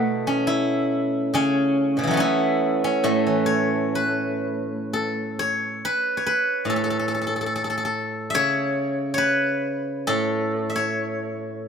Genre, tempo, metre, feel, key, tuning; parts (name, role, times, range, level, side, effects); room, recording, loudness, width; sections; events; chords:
chinese traditional, Chinese solo plucked strings; 62-72 BPM; 2/4; rubato; A gong mode; A4 = 440 Hz
steel-string zither; solo; 0.0-11.7 s; A2 to E5; -21 LUFS; equal
moderate plate reverb, RT60 2.6 s; -21 LUFS; side -6 dB against mid
0.0-4.9 A section; 4.9-11.7 B section